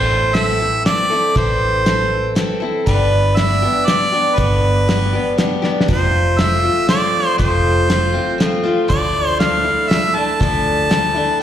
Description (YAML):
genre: folk rock and heartland rock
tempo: 119 BPM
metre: 3/4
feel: straight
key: A minor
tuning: A4 = 440 Hz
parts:
  - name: clear harmonica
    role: melody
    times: 0.0-11.4 s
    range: B4 to A5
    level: -18 LUFS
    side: right 1 dB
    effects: slapback echo
  - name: picked acoustic archtop guitar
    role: accompaniment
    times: 0.0-11.4 s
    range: F2 to A4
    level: -20 LUFS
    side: left 2 dB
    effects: slapback echo
  - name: vintage muted fingered electric bass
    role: bass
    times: 0.0-11.2 s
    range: F1 to D2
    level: -19 LUFS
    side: equal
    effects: none
  - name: cloth-damped thuddy drum kit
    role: drums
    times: 0.3-11.0 s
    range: hi-hat, kick drum, snare drum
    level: -19 LUFS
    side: equal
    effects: slapback echo
room: light reverb, studio reverb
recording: live gig heard through the venue's PA, recital hall reverb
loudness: -14 LUFS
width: side -10 dB against mid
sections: 0.0-11.4 A section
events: drum fill 5.6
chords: 0.0 Am; 2.9 G; 5.9 F; 8.9 Dmadd9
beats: 0.35 0.86 | 1.36 1.86 2.37 | 2.87 3.38 3.88 | 4.38 4.88 5.39 | 5.89 6.39 6.89 | 7.40 7.90 8.40 | 8.90 9.41 9.91 | 10.41 10.91 11.41